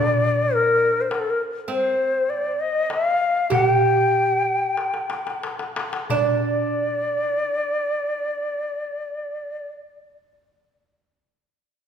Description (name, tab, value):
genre	Turkish makam ensemble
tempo	88-106 BPM (eighths)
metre	10/8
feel	straight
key	G makam nihavent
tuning	A4 = 440 Hz
part	bright reedy ney	melody	0.0-9.7 s	A4 to G5	-21 LUFS	left 2 dB	none
part	oud	second line	0.0-9.7 s	C4 to G4	-25 LUFS	right 5 dB	none
part	darbuka	percussion	0.2-6.7 s	none	-27 LUFS	left 2 dB	none
room	wet recital hall reverb, RT60 1.8 s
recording	minimal, uncompressed stereo recording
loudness	-20 LUFS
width	side -7 dB against mid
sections	0.0-6.1 A section; 6.1-11.9 B section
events	slowing down 0.0-6.1; drum fill 4.8-6.1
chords	none